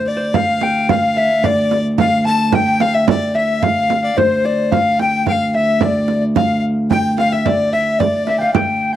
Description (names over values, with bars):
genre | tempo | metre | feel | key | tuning
medieval dance | 110 BPM | 2/4 | straight | D minor | A4 = 440 Hz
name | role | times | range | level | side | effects
breathy mellow tenor recorder | melody | 0.0-8.9 s | C5 to A5 | -17 LUFS | left 2 dB | none
concert harp | second line | 0.0-9.0 s | C5 to A5 | -24 LUFS | right 1 dB | none
rich fiddle | second line | 0.0-8.5 s | C5 to A5 | -23 LUFS | left 5 dB | none
dark viola da gamba | drone | 0.0-9.0 s | D2 | -20 LUFS | equal | none
frame drum | percussion | 0.1-8.8 s | none | -18 LUFS | right 7 dB | none
room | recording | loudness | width
light reverb | dry, close 1970s-style studio recording | -13 LUFS | side -12 dB against mid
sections
0.0-8.5 A section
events
none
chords
none